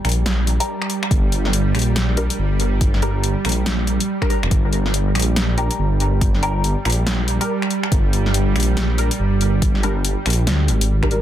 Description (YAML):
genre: deep dubstep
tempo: 141 BPM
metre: 4/4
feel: swing 61% on 16ths, half-time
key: G phrygian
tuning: A4 = 440 Hz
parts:
  - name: bowed-like drone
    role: sustained chords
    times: 0.0-11.2 s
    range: G3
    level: -25 LUFS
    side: right 3 dB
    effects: built-in reverb
  - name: dark detuned saw bass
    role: bass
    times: 0.0-11.2 s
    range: F1 to D2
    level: -19 LUFS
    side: equal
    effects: none
  - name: deep house drum kit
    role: drums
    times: 0.0-11.2 s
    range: finger snaps, hi-hat, snare drum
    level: -24 LUFS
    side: left 1 dB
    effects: overdrive
  - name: filtered dub chord stab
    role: stabs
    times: 0.6-11.2 s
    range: G3 to Bb4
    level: -26 LUFS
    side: left 1 dB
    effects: phaser, ensemble chorus, cassette tape, dub echo
  - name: electronic kick drum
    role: drums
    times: 1.1-11.1 s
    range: none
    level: -18 LUFS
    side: equal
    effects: overdrive
room: light reverb, digital ambience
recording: dense, heavily limited modern master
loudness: -16 LUFS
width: side -11 dB against mid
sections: 0.0-11.2 A section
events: none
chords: 0.0 Gm